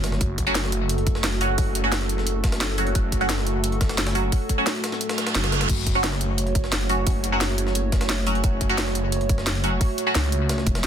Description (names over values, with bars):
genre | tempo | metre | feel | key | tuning
dark technical drum and bass | 175 BPM | 4/4 | straight | F# minor | A4 = 441 Hz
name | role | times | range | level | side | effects
dark analog pad | sustained chords | 0.0-10.9 s | A3 to C#5 | -29 LUFS | right 1 dB | chorus, sidechain pumping
vowel-sweep wobble bass | bass | 0.0-0.2, 10.7-10.9 s | E1 to F#1 | -25 LUFS | equal | chorus
drum and bass drum kit | drums | 0.0-10.9 s | crash cymbal, hi-hat, snare drum | -27 LUFS | equal | overdrive
jungle sampler-style drum kit | drums | 0.0-10.9 s | hi-hat, snare drum | -33 LUFS | equal | high-pass filter on hats, high-pass filter on snare, high-pass filter on room
phased detuned saw bass | bass | 0.2-10.7 s | F#1 to C#2 | -25 LUFS | equal | phaser, overdrive, sidechain pumping
electronic kick drum | drums | 0.2-10.7 s | none | -23 LUFS | equal | none
band-passed chord stab | stabs | 0.5-10.2 s | F#3 to F#4 | -26 LUFS | right 1 dB | phaser, wide subtle chorus, ping-pong delay
reverse cymbal | sound effects | 5.1-5.7 s | none | -27 LUFS | right 5 dB | none
room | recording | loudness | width
little or no reverb | dense, heavily limited modern master | -20 LUFS | side -9 dB against mid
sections
0.0-10.9 A section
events
kick drops out 5.0-5.7; reverse cymbal 5.1-5.7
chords
0.0 F#m